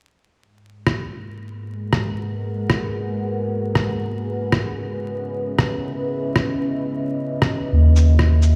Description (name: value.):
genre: future garage.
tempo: 131 BPM.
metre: 4/4.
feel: swing 63% on 16ths.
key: G# minor.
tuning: A4 = 440 Hz.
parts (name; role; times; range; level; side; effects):
deep dark ambient pad; sustained chords; 1.0-8.6 s; G#3 to F#5; -27 LUFS; equal; chorus, built-in reverb, vintage 12-bit sampler grit.
electronic rim click and shaker; drums; 0.9-8.5 s; none; -23 LUFS; equal; none.
warm sub bass; bass; 7.7-8.6 s; D#2; -14 LUFS; equal; none.
room: light reverb.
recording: played on a big sound system in a bare room, large studio reverb, vinyl crackle.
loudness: -21 LUFS.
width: mono.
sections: 0.4-8.6 A section.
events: none.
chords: 0.4 G#m7; 4.1 C#m7; 7.7 D#m7.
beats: | 0.40 0.86 1.32 1.77 | 2.23 2.69 3.15 3.61 | 4.06 4.52 4.98 5.44 | 5.90 6.35 6.81 7.27 | 7.73 8.19.